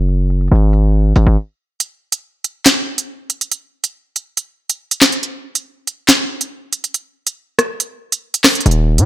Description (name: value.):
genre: hip hop, drill.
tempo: 140 BPM.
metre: 4/4.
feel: half-time.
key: unclear.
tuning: A4 = 438 Hz.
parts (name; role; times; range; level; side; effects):
distorted 808-style bass; bass; 0.0-1.4, 8.7-9.1 s; Eb1 to Bb2; -11 LUFS; equal; distortion.
drill drum kit; drums; 0.1-9.1 s; handclaps, hi-hat, rim click, snare drum; -12 LUFS; right 1 dB; none.
room: little or no reverb.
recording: low-pass filter.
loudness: -14 LUFS.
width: side -15 dB against mid.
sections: 0.0-1.8 A section; 1.8-9.1 B section.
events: filter sweep 0.0-1.8; break 1.4-1.8, 1.8-8.7.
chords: none.